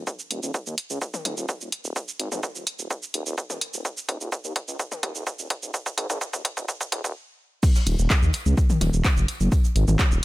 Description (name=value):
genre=melodic techno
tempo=127 BPM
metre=4/4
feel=straight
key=Eb minor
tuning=A4 = 440 Hz
part: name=swelling detuned saw bass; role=bass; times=0.0-10.2 s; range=Eb1 to Eb2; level=-25 LUFS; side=equal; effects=sidechain pumping, high-pass filter
part: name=electronic kick drum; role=drums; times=0.1-10.1 s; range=none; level=-23 LUFS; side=equal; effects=high-pass filter on kick
part: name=punchy analog drum machine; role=drums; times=0.1-10.2 s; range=crash cymbal, handclaps, hi-hat, shaker, toms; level=-29 LUFS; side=equal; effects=high-pass filter on hats, high-pass filter on perc, high-pass filter on toms, high-pass filter on cymbals, high-pass filter on snare
part: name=jazz brush drum kit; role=drums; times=7.6-10.1 s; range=hi-hat, snare drum, tambourine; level=-37 LUFS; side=right 1 dB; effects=sidechain pumping on hats, high-pass filter on hats, low-pass filter on hats, high-pass filter on snare, low-pass filter on snare, sidechain pumping on perc, high-pass filter on perc, low-pass filter on perc, high-pass filter on room, low-pass filter on room
room=studio reverb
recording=high-pass filter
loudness=-23 LUFS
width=side -18 dB against mid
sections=0.0-7.6 A section; 7.6-10.2 B section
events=build-up 0.0-7.6; drum fill 0.1-7.2; stop 7.2-7.6; drop 7.6-10.2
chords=none